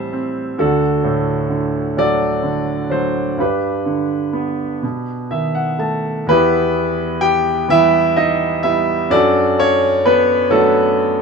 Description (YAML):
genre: classical, lyrical solo piano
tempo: 43 BPM (dotted quarters)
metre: 6/8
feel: rubato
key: E minor from 6.3 s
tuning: A4 = 439 Hz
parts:
  - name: bright concert grand piano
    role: solo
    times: 0.0-11.2 s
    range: D2 to A5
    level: -14 LUFS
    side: right 1 dB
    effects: none
room: moderate studio reverb, RT60 0.6 s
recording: none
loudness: -14 LUFS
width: side -5 dB against mid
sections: 0.0-6.3 A section; 6.3-11.2 B section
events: grand piano fill 4.8-6.3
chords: 0.0 Am7; 0.6 D; 3.4 G; 4.8 B7; 6.3 Em; 9.1 D/F#